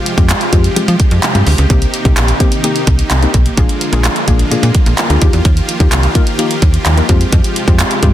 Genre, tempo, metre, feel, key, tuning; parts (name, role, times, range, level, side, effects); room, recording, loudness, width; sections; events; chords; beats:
dance-pop; 128 BPM; 4/4; straight; F dorian; A4 = 440 Hz
soft round pluck; accompaniment; 0.0-8.1 s; Ab3 to Bb4; -19 LUFS; left 4 dB; chorus
supersaw chords; sustained chords; 0.0-8.1 s; C3 to G4; -20 LUFS; right 1 dB; sidechain pumping
pop drum kit; drums; 0.1-8.1 s; handclaps, hi-hat, kick drum; -12 LUFS; equal
slap-like FM bass; bass; 0.2-8.1 s; Bb1 to F3; -12 LUFS; equal; sidechain pumping
group handclap; percussion; 0.3-7.9 s; -26 LUFS; right 5 dB
light reverb; dense, heavily limited modern master; -9 LUFS; side -12 dB against mid
0.0-8.1 A section
0.0 Fmadd9; 1.7 Cm7; 3.6 Bb7; 5.2 Ebadd9; 7.1 Fmadd9
0.29 0.76 1.23 | 1.70 2.17 2.64 3.11 | 3.58 4.04 4.51 4.98 | 5.45 5.92 6.39 6.86 | 7.33 7.79